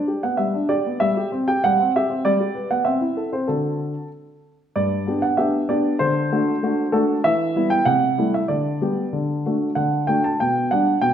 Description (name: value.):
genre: classical-period piano sonatina.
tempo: 96 BPM.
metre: 2/4.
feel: straight.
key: G major.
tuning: A4 = 441 Hz.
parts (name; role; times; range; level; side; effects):
warm baby grand piano; solo; 0.0-11.1 s; G2 to A5; -18 LUFS; equal; none.
room: wet recital hall reverb, RT60 1.3 s.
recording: none.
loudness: -18 LUFS.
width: side -9 dB against mid.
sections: 0.0-4.8 A section; 4.8-11.1 A section.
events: none.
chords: 0.0 G; 1.0 C5/G; 2.2 G; 2.9 Am/C; 3.5 D; 4.8 G; 6.0 D7; 7.2 Em; 7.9 Am7/C; 8.5 G/D; 9.1 D; 10.4 G/B.